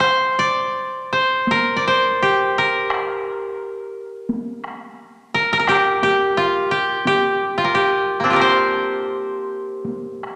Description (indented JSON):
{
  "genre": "japanese traditional, Japanese chamber music",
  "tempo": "77-89 BPM",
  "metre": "4/4",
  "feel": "rubato",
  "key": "C suspended pentatonic",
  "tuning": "A4 = 439 Hz",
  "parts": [
    { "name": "koto", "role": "melody", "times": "0.0-10.4 s", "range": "Bb3 to F5", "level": "-19 LUFS", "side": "equal", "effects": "none" },
    { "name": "taiko ensemble", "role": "percussion", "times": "0.0-10.4 s", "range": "none", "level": "-30 LUFS", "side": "equal", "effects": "none" }
  ],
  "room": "wet scoring stage reverb, RT60 1.9 s",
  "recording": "none",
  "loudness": "-19 LUFS",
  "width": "mono",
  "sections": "0.0-10.4 A section",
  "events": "none",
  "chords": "none",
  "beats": "| 0.01 0.75 1.49 2.21 | 2.91 3.60 4.30 4.99 | 5.67 6.36 7.04 7.72 | 8.40 9.11 9.85"
}